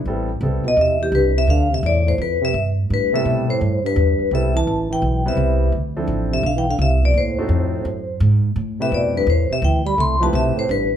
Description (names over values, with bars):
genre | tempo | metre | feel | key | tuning
jazz | 169 BPM | 4/4 | swing 66% on 8ths | A minor | A4 = 440 Hz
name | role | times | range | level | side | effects
upright bass | bass | 0.0-11.0 s | A1 to B2 | -20 LUFS | equal | none
clear concert grand piano | accompaniment | 0.1-0.6, 3.1-10.7 s | F3 to B4 | -26 LUFS | left 1 dB | none
mellow trombone | second line | 0.6-10.9 s | E2 to A3 | -24 LUFS | right 2 dB | none
vibraphone with medium hard mallets | melody | 0.7-10.8 s | G4 to C6 | -20 LUFS | left 2 dB | none
room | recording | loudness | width
moderate large studio reverb, RT60 1.2 s | band playing live in one room | -16 LUFS | side -9 dB against mid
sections
0.1-11.0 A section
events
none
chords
0.1 Am9; 1.5 Dmadd9; 2.9 Am9; 5.7 Dm9; 7.1 D#dim7; 8.6 Am9